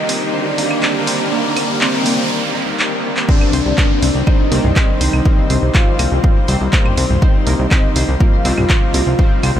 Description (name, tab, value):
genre	melodic techno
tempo	122 BPM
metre	4/4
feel	straight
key	unclear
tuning	A4 = 440 Hz
part	fat analog lead	melody	0.0-9.6 s	C4 to F4	-21 LUFS	equal	lush chorus, sidechain pumping, tape echo
part	sync-sweep polysynth	stabs	0.0-9.6 s	Eb3 to C4	-22 LUFS	left 1 dB	chorus, sidechain pumping, ping-pong delay
part	riser, noise sweep and downlifter	sound effects	0.0-7.2 s	none	-25 LUFS	equal	none
part	rich studio string section	texture	0.0-9.6 s	C3 to G5	-31 LUFS	left 2 dB	none
part	analog pluck	arpeggios	0.1-9.5 s	Bb3 to C6	-26 LUFS	equal	chorus, sidechain pumping, ping-pong delay
part	punchy analog drum machine	drums	0.1-9.5 s	claves, handclaps, hi-hat, toms	-21 LUFS	right 1 dB	sidechain pumping on perc, high-pass filter on perc, sidechain pumping on hats, high-pass filter on hats, sidechain pumping on toms, high-pass filter on toms, high-pass filter on snare
part	airy dreamy lead	second line	3.3-9.6 s	D5 to F5	-28 LUFS	equal	chorus, sidechain pumping, ping-pong delay
part	analog drone	drone	4.4-9.6 s	C3 to G3	-31 LUFS	left 1 dB	none
part	electronic kick drum	drums	3.3-9.3 s	none	-14 LUFS	equal	none
part	fat analog bass	bass	3.5-9.6 s	C2	-16 LUFS	equal	sidechain pumping
room	moderate huge ambient reverb, RT60 8.0 s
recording	dreamy mix soaked in reverb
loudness	-12 LUFS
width	side -10 dB against mid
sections	0.0-3.3 A section; 3.3-9.6 B section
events	build-up 0.0-3.3; riser 0.0-2.3; filter sweep on analog synth lead 0.0-3.3; filter sweep on analog polysynth 0.0-3.3; noise sweep 1.3-3.3; break 2.3-3.3; drum fill 2.8-3.3; drop 3.3-9.6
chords	0.0 Eb/C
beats	0.34 0.83 | 1.32 1.81 2.30 2.79 | 3.29 3.78 4.27 4.76 | 5.25 5.75 6.24 6.73 | 7.22 7.71 8.21 8.70 | 9.19